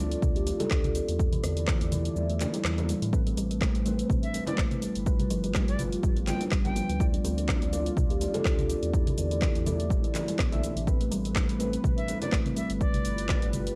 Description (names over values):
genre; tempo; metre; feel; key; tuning
afro house; 124 BPM; 4/4; swing 55% on 16ths; A minor; A4 = 440 Hz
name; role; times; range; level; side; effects
dark analog pad; sustained chords; 0.0-13.8 s; G3 to D5; -39 LUFS; equal; chorus, phaser, sidechain pumping, cassette tape
kalimba; arpeggios; 0.0-12.7 s; B2 to A4; -34 LUFS; equal; vintage 12-bit sampler grit, sidechain pumping, cassette tape, analog delay
round analog bass; bass; 0.0-13.7 s; E1 to A2; -36 LUFS; equal; sidechain pumping
house drum kit; drums; 0.1-13.8 s; handclaps, hi-hat, rim click, shaker, toms; -37 LUFS; equal; none
electronic kick drum; drums; 0.2-13.4 s; none; -30 LUFS; equal; none
congas; percussion; 0.5-13.6 s; none; -41 LUFS; equal; none
deep mellow chord stab; stabs; 3.1-12.8 s; G3 to E5; -42 LUFS; equal; chorus, sidechain pumping, cassette tape, analog delay
bright reedy silver concert flute; melody; 4.2-7.1, 12.0-13.5 s; D5 to G5; -40 LUFS; equal; analog delay
room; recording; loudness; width
little or no reverb; home recording on cassette; -28 LUFS; mono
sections
0.0-13.8 A section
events
kick drops out 2.2-3.1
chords
0.0 Dm; 1.2 E7sus4; 3.1 Amadd9; 5.1 G7; 7.0 Dm; 8.9 E7sus4; 10.9 Amadd9; 12.8 G7